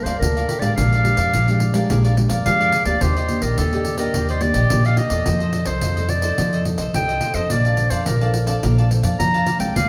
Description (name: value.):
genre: samba and choro.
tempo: 107 BPM.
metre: 4/4.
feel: straight.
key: unclear.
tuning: A4 = 440 Hz.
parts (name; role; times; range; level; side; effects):
warm clarinet; melody; 0.0-9.9 s; A4 to Bb5; -24 LUFS; equal; none.
nylon-string guitar; accompaniment; 0.0-9.9 s; Bb2 to D5; -28 LUFS; equal; none.
upright bass; bass; 0.0-9.9 s; A1 to F2; -23 LUFS; equal; none.
cavaquinho; accompaniment; 0.1-9.9 s; D4 to A5; -31 LUFS; equal; none.
pandeiro; percussion; 0.1-9.9 s; none; -28 LUFS; equal; none.
room: wet large studio reverb, RT60 1.3 s.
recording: band playing live in one room.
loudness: -19 LUFS.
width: mono.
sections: 0.0-9.9 A section.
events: none.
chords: 0.0 Gm9; 0.8 Bb6; 3.0 Ebmaj7; 5.3 F6; 7.5 Bbmaj9.